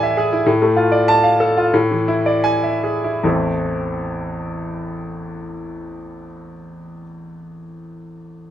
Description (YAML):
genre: classical, virtuoso piano study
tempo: 74-101 BPM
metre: 2/4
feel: rubato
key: A minor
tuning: A4 = 441 Hz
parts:
  - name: bright grand piano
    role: solo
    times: 0.0-8.5 s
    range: A1 to A5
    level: -18 LUFS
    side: equal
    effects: none
room: moderate studio ambience, RT60 0.5 s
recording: minimal, uncompressed stereo recording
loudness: -15 LUFS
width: side -11 dB against mid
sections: 0.0-3.2 A section; 3.2-6.4 B section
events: slowing down 0.0-3.2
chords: 0.5 Dm/A; 1.7 E7/A; 3.2 Am